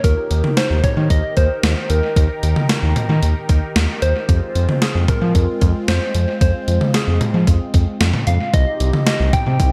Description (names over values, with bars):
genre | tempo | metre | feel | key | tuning
synth-pop | 113 BPM | 4/4 | straight | unclear | A4 = 440 Hz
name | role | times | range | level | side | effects
soft struck synth lead | melody | 0.0-9.7 s | Ab4 to G5 | -26 LUFS | equal | chorus, tremolo, analog delay
phased analog pad | sustained chords | 0.0-9.7 s | C3 to Bb4 | -29 LUFS | equal | phaser, chorus
round analog bass | bass | 0.0-9.7 s | C2 to F3 | -19 LUFS | equal | none
gated 80s digital drum machine | drums | 0.0-9.7 s | hi-hat, kick drum, snare drum, toms | -20 LUFS | equal | gated reverb, gated reverb snare, analog delay
room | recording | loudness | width
digital ambience | echo-heavy mix | -17 LUFS | mono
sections
0.0-9.7 A section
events
none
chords
0.0 Eb; 4.3 Fm; 8.5 Cm